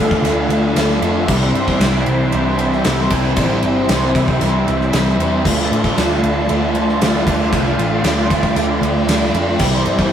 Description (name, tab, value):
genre	rock, shoegaze and dream pop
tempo	115 BPM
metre	4/4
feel	straight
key	unclear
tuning	A4 = 440 Hz
part	phased analog pad	sustained chords	0.0-10.1 s	D4 to A5	-23 LUFS	equal	phaser, chorus
part	overdriven electric guitar	riff	0.0-10.1 s	C3 to F4	-22 LUFS	equal	phaser
part	raw garage guitar	riff	0.0-10.1 s	C3 to F4	-20 LUFS	right 3 dB	overdrive
part	thick fuzz guitar	riff	0.0-10.1 s	C3 to D4	-21 LUFS	left 4 dB	distortion
part	vintage muted picked electric bass	bass	0.0-10.1 s	G1 to A2	-21 LUFS	equal	none
part	gated 80s drum kit	drums	0.1-10.1 s	crash cymbal, kick drum, ride cymbal, snare drum	-21 LUFS	equal	none
room	moderate small room reverb, RT60 0.5 s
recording	rough rehearsal-room recording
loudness	-14 LUFS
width	side -9 dB against mid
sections	0.0-10.1 A section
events	none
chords	0.0 Dmadd9; 1.3 Cadd9; 5.4 Dmadd9; 9.6 Cadd9